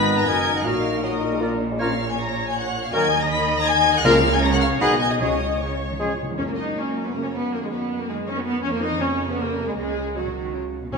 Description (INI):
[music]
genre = quick classical-period movement for symphony orchestra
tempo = 158 BPM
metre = 3/4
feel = rubato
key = F# major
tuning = A4 = 437 Hz
[part]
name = rich chamber violin section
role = melody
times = 0.0-11.0 s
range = E#4 to Cb7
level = -28 LUFS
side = left 2 dB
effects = none
[part]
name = clear oboe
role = second line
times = 0.0-6.1 s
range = G#4 to Eb5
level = -32 LUFS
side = equal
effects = none
[part]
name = mellow clarinet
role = second line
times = 0.0-6.1 s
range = Eb4 to F#4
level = -31 LUFS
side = left 2 dB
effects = none
[part]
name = mellow hollow small flute group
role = second line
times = 0.0-6.2 s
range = C#5 to Cb6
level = -27 LUFS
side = left 8 dB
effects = none
[part]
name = rich chamber violin section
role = second line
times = 0.0-11.0 s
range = F#4 to Cb6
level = -32 LUFS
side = left 1 dB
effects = none
[part]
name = dark bassoon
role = accompaniment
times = 0.0-6.1 s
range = Gb3 to Cb4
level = -28 LUFS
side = right 1 dB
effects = none
[part]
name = rich chamber viola section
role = accompaniment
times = 0.0-11.0 s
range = F#3 to Eb5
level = -26 LUFS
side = right 1 dB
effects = none
[part]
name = mellow French horn section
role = sustained chords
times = 0.0-6.1 s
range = Eb3 to Eb4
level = -28 LUFS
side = left 5 dB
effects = none
[part]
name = warm trumpet section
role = stabs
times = 0.0-6.1 s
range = G#4 to Cb5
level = -28 LUFS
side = left 1 dB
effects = none
[part]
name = warm chamber double bass section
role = bass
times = 0.0-11.0 s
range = Gb1 to F#2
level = -29 LUFS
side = right 2 dB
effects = none
[part]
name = warm studio cello section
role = bass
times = 0.0-11.0 s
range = Gb2 to A#3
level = -29 LUFS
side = right 2 dB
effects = none
[part]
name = timpani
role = percussion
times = 4.0-6.9, 10.9-11.0 s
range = F#2 to C#3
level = -29 LUFS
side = left 1 dB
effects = none
[sound]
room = wet scoring stage reverb, RT60 1.7 s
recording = small room ambience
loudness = -20 LUFS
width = side -4 dB against mid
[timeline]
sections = 0.0-6.4 A section; 6.4-11.0 B section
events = timpani fill 6.0-6.4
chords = 0.3 Ebm/Gb; 0.7 Ebm/Bb; 1.4 Bb; 1.8 A#m; 2.9 D#m; 4.1 A#m/C#; 4.8 G#m/B; 5.2 C#sus4; 6.0 C#; 6.4 F#; 7.5 Bmaj13/F#; 8.6 C#7/E#; 9.8 F#/C#; 10.5 N.C.